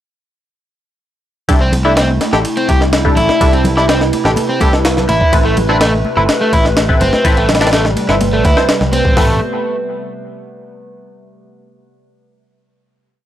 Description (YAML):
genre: breakbeat, breaks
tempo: 125 BPM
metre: 4/4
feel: straight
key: A minor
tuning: A4 = 439 Hz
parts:
  - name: warbly tape-like pad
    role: sustained chords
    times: 1.5-9.4 s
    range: C3 to B4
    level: -19 LUFS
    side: right 1 dB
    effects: chorus, built-in reverb, vintage 12-bit sampler grit, sidechain pumping
  - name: band-passed chord stab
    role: stabs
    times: 1.5-9.3 s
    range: C4 to D5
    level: -19 LUFS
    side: left 1 dB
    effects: phaser, analog delay
  - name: picked electric bass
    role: bass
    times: 1.5-9.4 s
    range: G1 to D2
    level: -17 LUFS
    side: equal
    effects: none
  - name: breakbeat sampler-style drum kit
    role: drums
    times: 1.5-9.3 s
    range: hi-hat, kick drum, ride cymbal, snare drum, toms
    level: -15 LUFS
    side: equal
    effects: studio reverb
  - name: crunchy overdriven guitar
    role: riff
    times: 1.6-9.4 s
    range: A3 to G4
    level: -17 LUFS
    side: equal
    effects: tube saturation, analog delay
  - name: congas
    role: percussion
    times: 1.7-9.0 s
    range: none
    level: -22 LUFS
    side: left 2 dB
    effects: none
room: light reverb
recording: dry, gritty hardware recording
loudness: -10 LUFS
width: side -12 dB against mid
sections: 1.5-9.2 drop; 9.2-11.1 final chord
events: drop 1.5-9.2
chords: 1.5 C6; 5.3 Amadd9